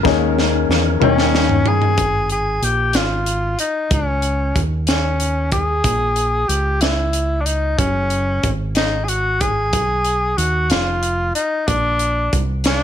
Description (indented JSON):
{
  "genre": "slow gospel",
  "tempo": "62 BPM (dotted quarters)",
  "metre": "6/8",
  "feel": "straight",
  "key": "unclear",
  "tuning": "A4 = 441 Hz",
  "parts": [
    { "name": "warm grand piano", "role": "accompaniment", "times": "0.0-2.0 s", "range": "D#3 to G5", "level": "-18 LUFS", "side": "left 16 dB", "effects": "none" },
    { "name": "percussive tonewheel organ", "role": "sustained chords", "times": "0.0-1.4 s", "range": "G3 to A#4", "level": "-26 LUFS", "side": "right 13 dB", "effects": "slow rotary speaker, overdrive, chorus vibrato" },
    { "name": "fingered electric bass", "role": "bass", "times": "0.0-12.8 s", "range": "E#1 to E2", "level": "-21 LUFS", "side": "right 1 dB", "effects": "none" },
    { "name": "crisp fusion drum kit", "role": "drums", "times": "0.1-12.8 s", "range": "hi-hat, kick drum, snare drum, toms", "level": "-20 LUFS", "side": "right 1 dB", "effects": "none" },
    { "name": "breathy tenor saxophone", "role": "melody", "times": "1.0-12.8 s", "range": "C#4 to G#4", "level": "-19 LUFS", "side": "left 1 dB", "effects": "none" }
  ],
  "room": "studio reverb",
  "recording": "1960s-style stereo with parts hard left and right",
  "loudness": "-16 LUFS",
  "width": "side -9 dB against mid",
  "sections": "0.0-2.0 A section; 2.0-12.8 B section",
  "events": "drum fill 0.0-2.0",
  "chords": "0.0 D#7sus4; 1.0 D#7; 2.0 G#sus2; 2.9 Fm7/Ab; 3.9 C#sus2; 5.8 A#m7b5; 7.8 F#5; 9.7 B; 10.7 D#sus2/E#; 11.7 A#"
}